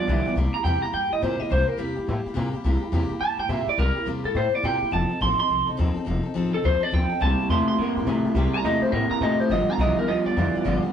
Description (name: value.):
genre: rockabilly.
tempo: 210 BPM.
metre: 4/4.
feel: swing 64% on 8ths.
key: C mixolydian.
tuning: A4 = 440 Hz.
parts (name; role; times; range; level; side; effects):
electric guitar through a small old amp; melody; 0.0-10.8 s; G4 to C6; -25 LUFS; right 1 dB; phaser.
picked steel-string acoustic guitar; accompaniment; 0.0-10.9 s; G2 to A4; -28 LUFS; left 2 dB; none.
electric guitar through a small old amp; riff; 0.0-0.3, 7.2-10.9 s; G2 to Bb3; -24 LUFS; right 1 dB; none.
upright bass; bass; 0.1-10.9 s; F1 to Bb2; -26 LUFS; equal; none.
room: moderate studio reverb, RT60 0.8 s.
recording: band playing live in one room, nothing above 11.0 kHz.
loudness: -21 LUFS.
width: side -8 dB against mid.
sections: 0.4-10.9 A section.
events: none.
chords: 0.4 C7; 4.9 F7; 7.2 C7; 9.5 G7.